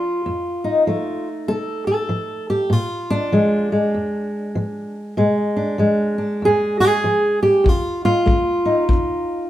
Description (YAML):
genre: acoustic country blues, solo or duo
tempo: 97 BPM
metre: 4/4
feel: swing 61% on 8ths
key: unclear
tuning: A4 = 440 Hz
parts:
  - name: fingerpicked steel-string acoustic guitar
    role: melody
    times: 0.0-9.5 s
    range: F2 to A4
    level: -17 LUFS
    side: equal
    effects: none
  - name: kick drum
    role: drums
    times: 7.7-9.1 s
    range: none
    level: -18 LUFS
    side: left 1 dB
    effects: none
room: moderate stone room reverb, RT60 0.9 s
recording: band playing live in one room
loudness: -17 LUFS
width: side -13 dB against mid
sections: 0.0-9.5 A section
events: none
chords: 0.0 F7; 2.7 Bb7; 5.2 Bdim7; 7.7 F7